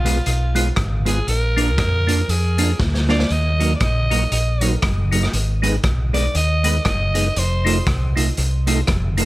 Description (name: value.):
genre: ska.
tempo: 118 BPM.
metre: 4/4.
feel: swing 58% on 8ths.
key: Eb harmonic minor.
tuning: A4 = 440 Hz.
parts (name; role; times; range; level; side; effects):
raspy alto saxophone; melody; 0.0-7.9 s; F4 to Eb5; -25 LUFS; right 1 dB; dub echo.
vintage hollow-body jazz guitar; accompaniment; 0.0-9.3 s; Gb3 to F4; -25 LUFS; right 5 dB; none.
fingered electric bass; bass; 0.0-9.3 s; F1 to F2; -19 LUFS; equal; none.
percussive tonewheel organ; stabs; 0.1-9.3 s; Cb4 to Cb5; -25 LUFS; left 3 dB; chorus vibrato, slow rotary speaker.
raw garage drum kit; drums; 0.1-9.3 s; hi-hat, kick drum, rim click, snare drum; -22 LUFS; equal; none.
room: little or no reverb.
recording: none.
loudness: -16 LUFS.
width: side -18 dB against mid.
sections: 0.0-9.3 A section.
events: alto saxophone solo 0.0-9.3; drum fill 2.8-3.3.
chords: 0.0 Fdim; 1.3 Bb; 3.3 Ebm; 5.3 Abm; 7.4 F7.